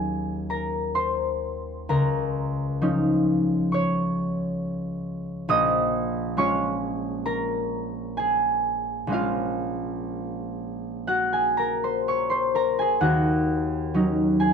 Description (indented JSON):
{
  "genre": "classical, solo harp piece",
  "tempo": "60-69 BPM",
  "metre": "4/4",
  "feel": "rubato",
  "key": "unclear",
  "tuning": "A4 = 440 Hz",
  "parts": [
    { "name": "concert harp", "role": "solo", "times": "0.0-14.5 s", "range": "Bb1 to Eb6", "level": "-22 LUFS", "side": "equal", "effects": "none" }
  ],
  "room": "light reverb",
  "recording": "minimal, uncompressed stereo recording",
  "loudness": "-23 LUFS",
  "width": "side -6 dB against mid",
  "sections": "0.0-14.5 A section",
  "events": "none",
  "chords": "0.0 Ebm7; 1.9 Db69; 5.5 Bbm7; 13.0 Ebm7",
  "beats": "0.04 0.97 | 1.91 2.81 3.72 4.62 | 5.49 6.38 7.27 8.20 | 9.14 10.11 11.07 12.05 | 13.03 13.98"
}